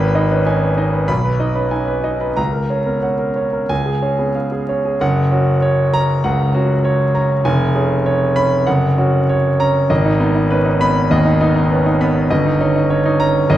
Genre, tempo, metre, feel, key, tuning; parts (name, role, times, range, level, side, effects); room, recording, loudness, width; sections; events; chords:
classical, virtuoso piano study; 98 BPM; 4/4; rubato; F# major; A4 = 440 Hz
clear grand piano; solo; 0.0-13.6 s; E#1 to B5; -14 LUFS; equal
wet recital hall reverb, RT60 1.4 s; vinyl crackle; -14 LUFS; side -13 dB against mid
0.0-5.0 A section; 5.0-13.6 B section
0.0 G#m; 1.1 G#m/B; 2.4 F#/C#; 3.7 C#; 5.0 F#; 7.4 C#7/E#; 8.7 F#; 9.9 G#m; 12.3 D#7/G